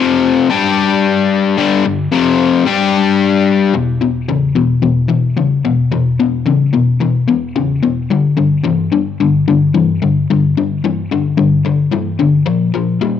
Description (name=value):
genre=rock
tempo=110 BPM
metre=4/4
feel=straight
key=unclear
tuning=A4 = 440 Hz
part: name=crunchy overdriven guitar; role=solo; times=0.0-13.2 s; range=E2 to G4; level=-11 LUFS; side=left 5 dB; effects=none
room=light reverb, digital ambience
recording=none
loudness=-11 LUFS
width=side -9 dB against mid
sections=0.0-3.8 A section; 3.8-13.2 B section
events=none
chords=0.0 F5; 0.5 G5; 2.1 F5; 2.7 G5; 3.8 E5; 8.1 G5; 12.5 Bb5